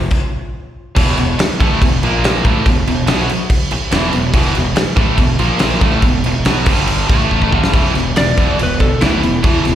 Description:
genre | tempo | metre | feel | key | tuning
hard rock | 142 BPM | 4/4 | straight | E phrygian | A4 = 441 Hz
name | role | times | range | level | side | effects
tight distorted guitar | riff | 0.0-9.8 s | E2 to B3 | -17 LUFS | right 1 dB | distortion, slapback echo
fuzz fingered electric bass | bass | 0.0-9.8 s | E1 to E2 | -19 LUFS | equal | overdrive
big rock drum kit | drums | 0.1-9.8 s | crash cymbal, kick drum, snare drum | -15 LUFS | equal | none
lightly driven lead guitar | melody | 8.2-9.8 s | E4 to D5 | -20 LUFS | left 1 dB | slapback echo, tape echo
room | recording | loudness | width
light reverb | live gig heard through the venue's PA, recital hall reverb | -12 LUFS | side -11 dB against mid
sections
1.0-7.7 A section; 7.7-9.8 B section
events
stop 0.1-1.0; drum fill 7.3-7.7; lead electric guitar solo 7.7-9.8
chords
0.0 F5; 1.0 E5; 2.0 A#5; 2.4 E5; 5.4 A#5; 5.8 E5; 6.7 G5; 7.1 A5; 7.5 G5; 7.7 E5

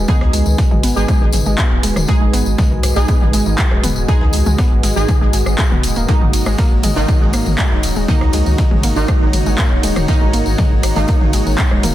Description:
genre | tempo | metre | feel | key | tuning
melodic techno | 120 BPM | 4/4 | straight | G# minor | A4 = 440 Hz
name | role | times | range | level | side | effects
dark analog pad | sustained chords | 0.0-11.9 s | F#4 to A#5 | -27 LUFS | left 2 dB | chorus, sidechain pumping
warbly dusty pluck | arpeggios | 0.0-11.9 s | D#3 to G#4 | -22 LUFS | equal | chorus, cassette tape, sidechain pumping, digital delay
synth brass stab | stabs | 0.0-11.9 s | D#3 to G#4 | -23 LUFS | right 2 dB | chorus, phaser, sidechain pumping, digital delay
round analog bass | bass | 0.0-11.9 s | D#1 to C#2 | -18 LUFS | equal | sidechain pumping
swarming drone | drone | 0.9-11.9 s | G#2 to G#3 | -29 LUFS | right 1 dB | none
dusty soul sampler-style drum kit | drums | 0.1-11.9 s | hi-hat, snare drum | -34 LUFS | left 1 dB | none
electronic kick drum | drums | 0.1-11.7 s | none | -15 LUFS | equal | none
punchy analog drum machine | drums | 0.1-11.9 s | handclaps, hi-hat, ride cymbal, rim click, toms | -23 LUFS | left 1 dB | none
tambourine | percussion | 0.1-11.9 s | none | -28 LUFS | left 4 dB | none
granular cloud pad | texture | 7.5-11.9 s | D#4 to F#5 | -27 LUFS | equal | built-in reverb, sidechain pumping
room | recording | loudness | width
digital ambience | dense, heavily limited modern master | -12 LUFS | side -13 dB against mid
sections
0.0-11.9 A section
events
none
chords
0.0 G#m7; 6.1 D#m7

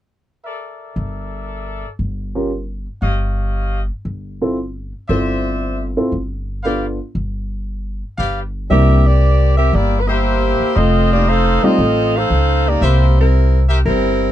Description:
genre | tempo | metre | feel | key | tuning
jazz | 116 BPM | 4/4 | swing 68% on 8ths | C mixolydian | A4 = 438 Hz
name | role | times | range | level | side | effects
clear trumpet section | stabs | 0.4-13.8 s | F4 to F5 | -24 LUFS | left 2 dB | none
upright bass | bass | 1.0-14.3 s | F1 to Db2 | -17 LUFS | equal | none
dark baby grand piano | accompaniment | 2.4-11.8 s | G3 to Bb4 | -18 LUFS | equal | none
mellow saxophone section | melody | 8.7-14.3 s | G3 to F5 | -17 LUFS | equal | plate reverb
room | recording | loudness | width
light reverb | dark, warm production | -14 LUFS | side -12 dB against mid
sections
0.4-8.7 A section; 8.7-14.3 B section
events
none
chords
0.4 Gm69; 2.5 Eb9; 4.6 Dm9; 6.6 G7; 8.7 C7; 10.8 F7; 12.8 C7

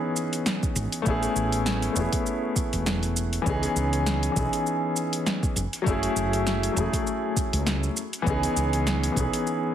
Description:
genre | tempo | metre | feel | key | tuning
sunset chillout | 100 BPM | 4/4 | swing 55% on 16ths | C# minor | A4 = 441 Hz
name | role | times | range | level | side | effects
clear concert grand piano | accompaniment | 0.0-9.7 s | E3 to G#4 | -26 LUFS | left 1 dB | auto-pan, ping-pong delay
deep house drum kit | drums | 0.2-9.6 s | hi-hat, shaker, snare drum | -29 LUFS | equal | overdrive
electronic kick drum | drums | 0.6-9.3 s | none | -29 LUFS | right 1 dB | overdrive
woody fretless electric bass | bass | 0.8-9.3 s | E1 to C#2 | -27 LUFS | right 1 dB | none
room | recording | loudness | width
moderate digital room reverb, RT60 1.1 s, digital ambience | heavily compressed radio sound | -23 LUFS | side -10 dB against mid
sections
0.0-9.7 A section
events
none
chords
0.0 C#m9; 1.1 Amaj9; 3.5 C#m9; 5.6 F#m9; 8.0 C#m9

